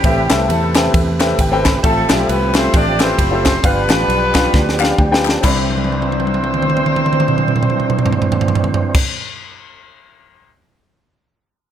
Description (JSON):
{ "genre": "uptempo gospel", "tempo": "133 BPM", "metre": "4/4", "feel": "swing 59% on 8ths", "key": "C major", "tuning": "A4 = 445 Hz", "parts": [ { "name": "dark horn section", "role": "melody", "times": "0.0-9.0 s", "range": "G3 to D5", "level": "-20 LUFS", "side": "equal", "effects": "none" }, { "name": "warm grand piano", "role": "accompaniment", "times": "0.0-9.0 s", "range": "C2 to B5", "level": "-21 LUFS", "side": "left 3 dB", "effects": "none" }, { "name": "overdriven tonewheel organ", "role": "sustained chords", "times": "0.0-9.0 s", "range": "C3 to E5", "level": "-22 LUFS", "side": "right 3 dB", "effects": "slow rotary speaker, chorus vibrato" }, { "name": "fingered electric bass", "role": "bass", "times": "0.0-9.0 s", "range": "F#1 to E2", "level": "-20 LUFS", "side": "equal", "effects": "none" }, { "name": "crisp fusion drum kit", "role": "drums", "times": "0.0-10.5 s", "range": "crash cymbal, kick drum, ride cymbal, snare drum, toms", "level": "-17 LUFS", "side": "right 1 dB", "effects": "none" }, { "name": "group handclap", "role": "percussion", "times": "0.3-9.0 s", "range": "none", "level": "-27 LUFS", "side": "left 8 dB", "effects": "none" } ], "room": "light reverb", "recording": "none", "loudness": "-13 LUFS", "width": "side -10 dB against mid", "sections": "0.0-5.4 A section; 5.4-9.0 B section", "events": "grand piano fill 0.9-1.8, 4.5-5.4; drum fill 4.5-5.4, 5.7-8.9", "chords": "0.0 Am9; 1.8 Fmaj9/A; 3.6 G7; 5.4 Cmaj9", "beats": "| 0.04 0.49 0.94 1.39 | 1.84 2.29 2.74 3.19 | 3.64 4.09 4.54 4.99 | 5.44 5.89 6.34 6.79 | 7.24 7.69 8.14 8.59" }